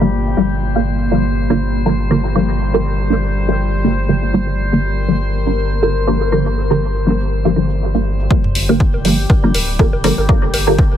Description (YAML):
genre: dub techno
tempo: 121 BPM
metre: 4/4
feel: swing 55% on 16ths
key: G minor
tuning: A4 = 439 Hz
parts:
  - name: deep dark ambient pad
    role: sustained chords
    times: 0.0-8.3 s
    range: Bb3 to C5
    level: -25 LUFS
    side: left 2 dB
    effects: chorus, built-in reverb, sidechain pumping
  - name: filtered dub chord stab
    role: stabs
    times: 0.0-10.8 s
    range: D3 to Bb3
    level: -17 LUFS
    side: equal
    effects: phaser, sidechain pumping, dub echo
  - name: round analog bass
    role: bass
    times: 0.0-11.0 s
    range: D1 to G1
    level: -19 LUFS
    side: equal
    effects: sidechain pumping
  - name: electronic shaker and hi-hat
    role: drums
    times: 0.0-10.6 s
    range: none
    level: -21 LUFS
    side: left 1 dB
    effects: low-pass filter on perc, low-pass filter on hats, low-pass filter on room
  - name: drifting glass-harmonics texture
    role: texture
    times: 0.0-11.0 s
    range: G3 to C5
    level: -26 LUFS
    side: left 2 dB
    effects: chorus, built-in reverb, sidechain pumping
  - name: electronic kick drum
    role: drums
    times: 8.3-10.9 s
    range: none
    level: -14 LUFS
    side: equal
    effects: overdrive
  - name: electronic bongos and toms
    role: percussion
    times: 8.3-10.9 s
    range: none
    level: -25 LUFS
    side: equal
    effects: overdrive, sidechain pumping on perc, sidechain pumping on toms, dub echo
room: light reverb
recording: none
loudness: -13 LUFS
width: side -10 dB against mid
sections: 0.0-8.3 A section; 8.3-11.0 B section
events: filter sweep on synth stab 0.0-8.3; filter sweep on ambient pad 0.0-8.3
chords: 0.0 Gm7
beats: | 0.37 0.87 1.36 1.86 | 2.35 2.85 3.35 3.84 | 4.34 4.83 5.33 5.83 | 6.32 6.82 7.31 7.81 | 8.31 8.80 9.30 9.79 | 10.29 10.79